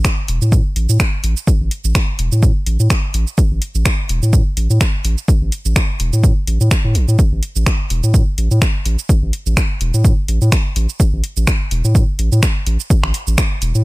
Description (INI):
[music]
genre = minimal techno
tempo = 126 BPM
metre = 4/4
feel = swing 55% on 16ths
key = unclear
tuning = A4 = 440 Hz
[part]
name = saturated sub bass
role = bass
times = 0.0-13.8 s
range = E1 to A2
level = -14 LUFS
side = equal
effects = sidechain pumping
[part]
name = electronic kick drum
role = drums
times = 0.0-13.5 s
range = none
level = -14 LUFS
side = equal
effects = overdrive
[part]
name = punchy analog drum machine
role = drums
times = 0.0-13.8 s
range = finger snaps, hi-hat, shaker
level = -23 LUFS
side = right 1 dB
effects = overdrive
[sound]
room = little or no reverb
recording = none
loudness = -13 LUFS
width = side -21 dB against mid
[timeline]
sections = 0.0-13.8 A section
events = none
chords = none